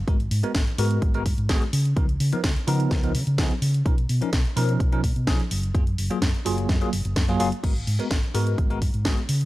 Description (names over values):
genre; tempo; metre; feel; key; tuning
filtered disco house; 127 BPM; 4/4; straight; G# dorian; A4 = 444 Hz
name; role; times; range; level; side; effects
hollow-body short-scale fingered electric bass; bass; 0.0-9.5 s; F#1 to C#3; -24 LUFS; equal; sidechain pumping, low-pass filter
bell-like tine electric piano; accompaniment; 0.1-9.2 s; E#3 to A#4; -27 LUFS; equal; medium stereo tremolo, phaser, vintage 12-bit sampler grit, sidechain pumping, low-pass filter
electronic kick drum; drums; 0.1-9.2 s; none; -24 LUFS; equal; studio reverb
house drum kit; drums; 0.1-9.5 s; crash cymbal, hi-hat, snare drum; -30 LUFS; equal; sidechain pumping on hats, studio reverb, sidechain pumping on cymbals
room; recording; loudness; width
little or no reverb; dry, gritty hardware recording; -21 LUFS; side -17 dB against mid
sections
0.0-7.6 A section; 7.6-9.5 B section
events
drop 0.0-7.6; filter sweep 7.6-9.5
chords
0.1 G#m9; 1.7 C#13; 3.9 Bmaj9#11; 5.5 F#maj9; 7.6 G#m9